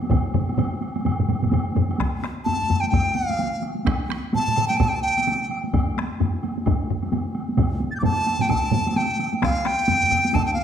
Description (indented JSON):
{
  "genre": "japanese traditional, taiko drum ensemble",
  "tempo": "129 BPM",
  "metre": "4/4",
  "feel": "swing 60% on 16ths",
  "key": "unclear",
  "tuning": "A4 = 440 Hz",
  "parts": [
    { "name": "taiko ensemble", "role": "percussion", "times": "0.0-10.6 s", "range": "none", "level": "-26 LUFS", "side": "right 1 dB", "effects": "none" },
    { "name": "woodblock", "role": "percussion", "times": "0.0-10.5 s", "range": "none", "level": "-36 LUFS", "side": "equal", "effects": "none" },
    { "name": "taiko ensemble", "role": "percussion", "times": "0.1-10.5 s", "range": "none", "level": "-26 LUFS", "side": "left 4 dB", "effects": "none" },
    { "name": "taiko ensemble", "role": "percussion", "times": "0.1-8.9 s", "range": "none", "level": "-27 LUFS", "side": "right 5 dB", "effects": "none" },
    { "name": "taiko ensemble", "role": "percussion", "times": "0.1-10.5 s", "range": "none", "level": "-26 LUFS", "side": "equal", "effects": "none" },
    { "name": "hollow dizi", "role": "melody", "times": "2.4-10.6 s", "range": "F5 to A6", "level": "-22 LUFS", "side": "equal", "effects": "none" }
  ],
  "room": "wet recital hall reverb, RT60 1.4 s",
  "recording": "none",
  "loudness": "-20 LUFS",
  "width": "side -8 dB against mid",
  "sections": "0.0-2.0 A section; 2.0-10.6 B section",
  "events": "speeding up 0.0-10.6",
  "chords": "none",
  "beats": "| 0.10 0.58 1.05 1.53 | 2.00 2.47 2.94 3.41 | 3.88 4.35 4.82 5.28 | 5.75 6.21 6.67 7.13 | 7.60 8.06 8.52 8.97 | 9.43 9.89 10.34"
}